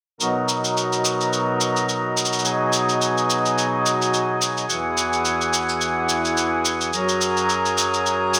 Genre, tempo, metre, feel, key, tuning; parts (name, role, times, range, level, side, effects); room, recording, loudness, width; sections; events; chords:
folktronica; 107 BPM; 4/4; swing 56% on 16ths; B major; A4 = 440 Hz
hand-pumped harmonium; sustained chords; 0.2-8.4 s; E2 to A#4; -22 LUFS; equal; low-pass filter
shaker; drums; 0.2-8.4 s; -26 LUFS; equal
moderate echo chamber reverb, RT60 1.3 s, small room ambience; -21 LUFS; mono
0.2-8.4 A section
filter sweep on harmonium 0.2-8.4
0.2 Bmaj7; 4.7 Eadd9; 6.9 F#add9